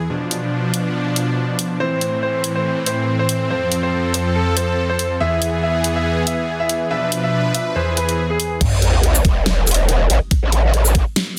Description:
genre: heavy wobble dubstep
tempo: 141 BPM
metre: 4/4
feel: swing 54% on 16ths, half-time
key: A harmonic minor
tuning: A4 = 441 Hz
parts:
  - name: supersaw chords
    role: sustained chords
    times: 0.0-8.6 s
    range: E2 to B4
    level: -22 LUFS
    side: equal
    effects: sidechain pumping
  - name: dubstep drum kit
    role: drums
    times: 0.3-11.3 s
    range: crash cymbal, hi-hat, shaker, snare drum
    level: -24 LUFS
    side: equal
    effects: studio ambience
  - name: clear grand piano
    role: melody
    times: 1.8-8.5 s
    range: G#4 to E5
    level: -24 LUFS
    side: equal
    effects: digital delay
  - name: growl bass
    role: bass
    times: 8.6-11.0 s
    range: E1 to A1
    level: -18 LUFS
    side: equal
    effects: chorus, overdrive
  - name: electronic kick drum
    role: drums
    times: 8.6-11.0 s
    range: none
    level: -19 LUFS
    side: equal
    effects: studio ambience
  - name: sub drop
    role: sound effects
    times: 8.6-10.3 s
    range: none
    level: -24 LUFS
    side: equal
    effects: none
room: light reverb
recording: dense, heavily limited modern master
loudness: -18 LUFS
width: mono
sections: 0.0-8.6 A section; 8.6-11.4 B section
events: drop 8.6-11.4; impact 8.6-10.3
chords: 0.1 Bdim; 1.8 Am; 3.5 F; 5.2 E; 6.9 Bdim; 7.8 E; 8.6 A5

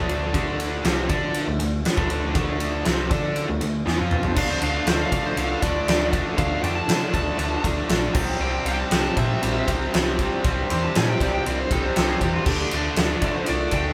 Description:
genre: hard rock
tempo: 119 BPM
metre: 4/4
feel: straight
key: D minor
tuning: A4 = 440 Hz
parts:
  - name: overdriven electric guitar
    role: riff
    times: 0.0-13.9 s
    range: C3 to D5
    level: -28 LUFS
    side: equal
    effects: none
  - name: hollow-body short-scale picked electric bass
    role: bass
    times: 0.0-13.9 s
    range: Bb1 to D3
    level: -31 LUFS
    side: equal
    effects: none
  - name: huge arena drum kit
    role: drums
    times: 0.1-13.8 s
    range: crash cymbal, kick drum, ride cymbal, snare drum, toms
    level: -26 LUFS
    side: equal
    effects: none
  - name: bluesy overdriven lead guitar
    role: melody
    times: 4.4-13.9 s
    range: D4 to C6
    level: -30 LUFS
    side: equal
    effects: distortion
room: light reverb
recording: band playing live in one room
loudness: -23 LUFS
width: mono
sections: 0.0-4.4 A section; 4.4-13.9 B section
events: drum fill 3.9-4.4; lead electric guitar solo 4.4-13.9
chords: 0.0 Dm; 8.2 C5; 12.5 D5

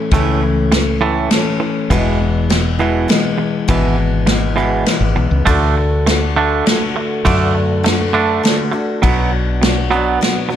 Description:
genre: folk rock and heartland rock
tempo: 101 BPM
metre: 3/4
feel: straight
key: D lydian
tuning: A4 = 440 Hz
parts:
  - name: picked steel-string acoustic guitar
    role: accompaniment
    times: 0.0-10.6 s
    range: E2 to F#4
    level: -19 LUFS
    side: left 4 dB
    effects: none
  - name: twangy electric guitar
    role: riff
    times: 0.0-10.6 s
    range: E2 to D4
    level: -19 LUFS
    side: right 6 dB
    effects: spring reverb
  - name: woody fretless electric bass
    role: bass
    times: 0.1-10.2 s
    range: E1 to F#2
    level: -18 LUFS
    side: equal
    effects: none
  - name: unplugged drum kit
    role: drums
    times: 0.1-10.4 s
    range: kick drum, ride cymbal, snare drum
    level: -19 LUFS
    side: equal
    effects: none
room: light reverb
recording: none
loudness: -13 LUFS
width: side -10 dB against mid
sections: 0.0-10.6 A section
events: none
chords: 0.0 A; 1.9 E; 5.5 D; 9.0 Bm

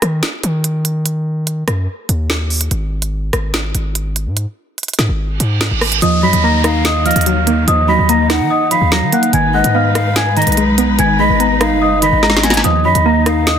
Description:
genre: hip hop, drill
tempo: 145 BPM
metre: 4/4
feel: half-time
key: Eb minor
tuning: A4 = 440 Hz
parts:
  - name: hard-hitting 808-style bass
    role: bass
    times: 0.0-13.6 s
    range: Gb1 to Eb3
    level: -17 LUFS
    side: equal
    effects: none
  - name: drill drum kit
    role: drums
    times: 0.0-13.6 s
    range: hi-hat, rim click, snare drum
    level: -18 LUFS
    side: right 1 dB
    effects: none
  - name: reverse cymbal and downlifter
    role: sound effects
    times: 5.4-9.3 s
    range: none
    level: -23 LUFS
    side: right 4 dB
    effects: none
  - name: large celesta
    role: melody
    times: 6.0-13.6 s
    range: Eb5 to Cb7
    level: -16 LUFS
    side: equal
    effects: none
  - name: soft round pluck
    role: accompaniment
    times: 6.0-13.6 s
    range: Eb3 to Eb4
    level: -17 LUFS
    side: right 2 dB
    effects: chorus
  - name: warm symphonic string section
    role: sustained chords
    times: 6.0-13.6 s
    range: Eb3 to Cb5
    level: -21 LUFS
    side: left 1 dB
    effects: none
  - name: breathy bright large pan pipes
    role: second line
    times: 6.2-13.6 s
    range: Eb5 to Gb5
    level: -22 LUFS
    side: left 8 dB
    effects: tape echo
room: small room ambience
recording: dense, heavily limited modern master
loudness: -12 LUFS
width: side -8 dB against mid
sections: 0.0-6.0 A section; 6.0-13.6 B section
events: break 0.0-6.0; reverse cymbal 5.4-6.0; drum fill 12.2-12.6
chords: 0.0 N.C.; 6.0 Ebmadd9; 9.3 Abm; 12.6 Ebmadd9

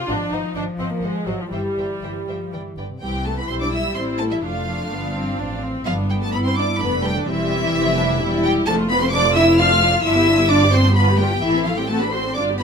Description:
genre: quick classical-period movement for string orchestra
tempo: 128 BPM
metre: 3/4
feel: rubato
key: C major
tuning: A4 = 440 Hz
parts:
  - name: rich studio viola section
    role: accompaniment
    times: 0.0-12.6 s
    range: E3 to A4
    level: -25 LUFS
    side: left 1 dB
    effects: none
  - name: dark studio cello section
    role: bass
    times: 0.0-12.6 s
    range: C3 to F4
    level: -23 LUFS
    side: left 1 dB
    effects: none
  - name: rich studio violin section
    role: melody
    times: 0.1-12.6 s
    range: D5 to F6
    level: -24 LUFS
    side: equal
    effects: none
  - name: dark studio violin section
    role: second line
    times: 0.1-12.6 s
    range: D4 to F5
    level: -23 LUFS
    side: equal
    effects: none
  - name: dark studio double bass section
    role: bass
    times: 0.1-12.6 s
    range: E1 to G2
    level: -23 LUFS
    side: right 1 dB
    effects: none
room: moderate stone room reverb, RT60 1.1 s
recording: none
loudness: -17 LUFS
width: side -6 dB against mid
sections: 0.0-3.0 A section; 3.0-12.6 B section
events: none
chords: 0.1 Ab7; 1.5 C/G; 2.5 G; 3.0 C; 4.0 Am; 4.4 Dm/F; 5.9 G; 6.8 G7/F; 7.3 C/E; 8.7 Dm/F; 10.0 G7; 11.4 Am; 11.9 D7/A

